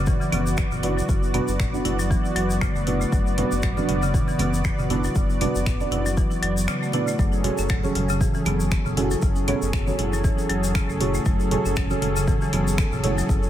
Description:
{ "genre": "afro house", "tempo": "118 BPM", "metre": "4/4", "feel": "swing 56% on 16ths", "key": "F# minor", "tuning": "A4 = 440 Hz", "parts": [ { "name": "warm analog pad", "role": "sustained chords", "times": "0.0-13.5 s", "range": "F#3 to D5", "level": "-28 LUFS", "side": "equal", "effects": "chorus, sidechain pumping" }, { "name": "marimba with hard mallets", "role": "arpeggios", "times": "0.0-13.3 s", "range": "C#3 to E4", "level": "-27 LUFS", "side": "left 1 dB", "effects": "sidechain pumping, analog delay" }, { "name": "round analog bass", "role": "bass", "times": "0.0-13.5 s", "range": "F#1", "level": "-27 LUFS", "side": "equal", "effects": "sidechain pumping" }, { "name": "afro-pop drum kit", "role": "drums", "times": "0.1-13.2 s", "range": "finger snaps, hi-hat, toms", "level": "-32 LUFS", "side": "equal", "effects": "overdrive" }, { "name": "electronic kick drum", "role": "drums", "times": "0.1-13.4 s", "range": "none", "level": "-23 LUFS", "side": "equal", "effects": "none" }, { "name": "egg shaker", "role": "percussion", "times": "0.1-13.5 s", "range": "none", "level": "-37 LUFS", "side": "left 4 dB", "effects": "none" }, { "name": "congas", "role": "percussion", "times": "0.2-13.4 s", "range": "none", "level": "-33 LUFS", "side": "right 4 dB", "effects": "none" }, { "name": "deep mellow chord stab", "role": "stabs", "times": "0.8-13.2 s", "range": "B3 to D5", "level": "-29 LUFS", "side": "right 3 dB", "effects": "chorus, phaser, cassette tape, sidechain pumping, analog delay" } ], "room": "light reverb", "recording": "none", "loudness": "-20 LUFS", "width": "side -12 dB against mid", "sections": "0.0-13.5 A section", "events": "none", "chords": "0.0 Bm/F#; 7.2 F#madd9", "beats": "0.07 0.58 | 1.09 1.60 2.11 2.62 | 3.12 3.63 4.14 4.65 | 5.16 5.67 6.17 6.68 | 7.19 7.70 8.21 8.72 | 9.22 9.73 10.24 10.75 | 11.26 11.77 12.28 12.78 | 13.29" }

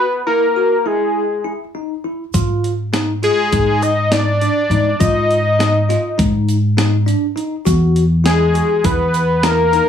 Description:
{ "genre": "progressive instrumental, band music in an uneven meter", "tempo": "203 BPM (eighths)", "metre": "9/8", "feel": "straight", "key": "unclear", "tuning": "A4 = 441 Hz", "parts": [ { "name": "fat analog lead", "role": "melody", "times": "0.0-9.9 s", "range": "G#4 to Eb5", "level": "-15 LUFS", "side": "left 2 dB", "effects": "none" }, { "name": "bell-like tine electric piano", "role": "arpeggios", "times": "0.0-9.9 s", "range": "D4 to Gb4", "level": "-22 LUFS", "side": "equal", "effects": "phaser" }, { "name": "upright bass", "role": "bass", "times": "2.3-9.8 s", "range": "E2 to Ab2", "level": "-17 LUFS", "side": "equal", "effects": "none" }, { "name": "breakbeat sampler-style drum kit", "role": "drums", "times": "2.3-9.9 s", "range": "hi-hat, kick drum, snare drum", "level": "-20 LUFS", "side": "equal", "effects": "none" }, { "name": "tube shaker", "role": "percussion", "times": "2.3-9.9 s", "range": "none", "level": "-33 LUFS", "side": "right 6 dB", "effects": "none" } ], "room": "light reverb", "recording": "studio reverb", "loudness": "-13 LUFS", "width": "side -8 dB against mid", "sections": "0.0-9.9 A section", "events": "none", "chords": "0.0 E; 2.3 Ab5; 7.7 E", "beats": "0.26 0.56 0.85 1.15 1.45 1.74 2.04 | 2.33 2.63 2.93 3.22 3.52 3.81 4.11 4.41 4.70 | 5.00 5.29 5.59 5.89 6.18 6.48 6.77 7.07 7.37 | 7.66 7.96 8.25 8.55 8.84 9.14 9.44 9.73" }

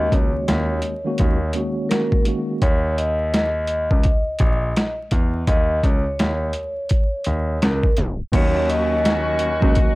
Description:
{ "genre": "hip hop, boom-bap hip-hop", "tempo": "84 BPM", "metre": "4/4", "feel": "swing 62% on 16ths", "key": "Eb minor", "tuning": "A4 = 442 Hz", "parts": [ { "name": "vibraphone with medium mallets", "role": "melody", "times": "0.0-10.0 s", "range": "Bb4 to Eb5", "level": "-24 LUFS", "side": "equal", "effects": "high-pass filter, low-pass filter" }, { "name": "mellow tine electric piano", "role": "accompaniment", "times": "0.0-2.6, 8.3-10.0 s", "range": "Eb3 to Gb4", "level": "-24 LUFS", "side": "right 1 dB", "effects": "medium stereo tremolo, high-pass filter, low-pass filter" }, { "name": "warm concert grand piano", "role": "bass", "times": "0.0-9.7 s", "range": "Bb1 to F2", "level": "-23 LUFS", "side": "equal", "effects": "tube saturation" }, { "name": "boom bap sampler-style drum kit", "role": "drums", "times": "0.1-10.0 s", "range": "crash cymbal, hi-hat, kick drum, snare drum", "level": "-19 LUFS", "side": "equal", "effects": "overdrive" }, { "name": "warm studio string section", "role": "sustained chords", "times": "8.3-10.0 s", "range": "Bb4 to Db6", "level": "-33 LUFS", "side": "left 2 dB", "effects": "high-pass filter, low-pass filter" }, { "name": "warm horn section", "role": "stabs", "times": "8.3-10.0 s", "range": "Eb3 to Gb4", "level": "-28 LUFS", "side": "left 1 dB", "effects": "high-pass filter, low-pass filter" } ], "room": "small room ambience", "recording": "dry, gritty hardware recording, vinyl crackle, tape stop", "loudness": "-18 LUFS", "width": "side -20 dB against mid", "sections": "0.0-8.3 A section; 8.3-10.0 B section", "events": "tape stop 8.0-8.3", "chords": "0.0 Ab9sus4; 2.6 Eb5; 5.5 Dbsus2; 8.3 Ebm7", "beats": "0.48 1.19 1.90 | 2.62 3.33 4.05 4.76 | 5.48 6.19 6.90 7.62 | 8.33 9.05 9.76" }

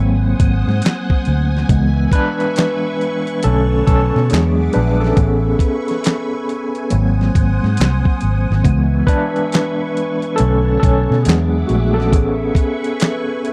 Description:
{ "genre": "R&B, neo-soul", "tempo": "69 BPM", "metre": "4/4", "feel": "swing 62% on 16ths", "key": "unclear", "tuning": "A4 = 440 Hz", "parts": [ { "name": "overdriven tine electric piano", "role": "accompaniment", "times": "0.0-13.5 s", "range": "D3 to B4", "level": "-21 LUFS", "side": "equal", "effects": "fast tremolo" }, { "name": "soft string machine", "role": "sustained chords", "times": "0.0-13.5 s", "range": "G#4 to D#6", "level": "-30 LUFS", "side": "equal", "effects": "phaser, ensemble chorus" }, { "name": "vintage muted fingered electric bass", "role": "bass", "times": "0.0-12.5 s", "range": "G#1 to B2", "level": "-18 LUFS", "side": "equal", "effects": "none" }, { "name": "dusty soul sampler-style drum kit", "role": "drums", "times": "0.4-13.5 s", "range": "handclaps, hi-hat, kick drum, snare drum", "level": "-19 LUFS", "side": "equal", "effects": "none" } ], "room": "little or no reverb", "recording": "dry, close 1970s-style studio recording", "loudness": "-16 LUFS", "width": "mono", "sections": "0.0-13.5 A section", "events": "tine electric piano solo 0.0-13.5", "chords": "0.0 G#7; 1.7 C#m7; 3.4 Bm9; 4.3 E9; 5.2 Amaj9; 6.9 G#7; 8.6 C#m7; 10.4 Bm9; 11.3 E9; 12.1 Amaj9", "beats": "0.82 | 1.69 2.56 3.43 4.30 | 5.17 6.04 6.91 7.78 | 8.65 9.52 10.39 11.26 | 12.12 12.99" }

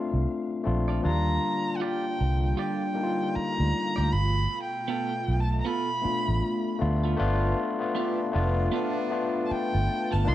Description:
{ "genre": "R&B", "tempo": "78 BPM", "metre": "4/4", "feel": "swing 61% on 16ths", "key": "unclear", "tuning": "A4 = 440 Hz", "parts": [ { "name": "overdriven tine electric piano", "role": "accompaniment", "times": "0.0-10.3 s", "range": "F3 to F4", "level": "-29 LUFS", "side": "left 4 dB", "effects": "none" }, { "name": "vintage muted fingered electric bass", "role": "bass", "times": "0.1-10.3 s", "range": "F1 to Eb2", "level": "-25 LUFS", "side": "equal", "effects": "none" }, { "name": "clean electric guitar", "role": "second line", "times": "0.9-10.2 s", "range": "B3 to D5", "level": "-34 LUFS", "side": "right 8 dB", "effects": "none" }, { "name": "warm analog pad", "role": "sustained chords", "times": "1.0-10.3 s", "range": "B2 to Bb5", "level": "-36 LUFS", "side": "right 2 dB", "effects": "chorus" }, { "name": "rich erhu", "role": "melody", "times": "1.1-10.3 s", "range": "F#5 to C6", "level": "-31 LUFS", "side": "right 1 dB", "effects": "tape echo" }, { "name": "warm horn section", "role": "stabs", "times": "7.2-10.3 s", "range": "G3 to G4", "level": "-37 LUFS", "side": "right 2 dB", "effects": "none" } ], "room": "light reverb", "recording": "dark, warm production", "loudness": "-24 LUFS", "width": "side -13 dB against mid", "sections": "0.0-7.2 A section; 7.2-10.3 B section", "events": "none", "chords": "0.0 Bbmaj7; 1.0 Ebmaj9; 4.1 G9", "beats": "0.26 | 1.03 1.80 2.57 3.33 | 4.10 4.87 5.64 6.41 | 7.18 7.95 8.72 9.49 | 10.26" }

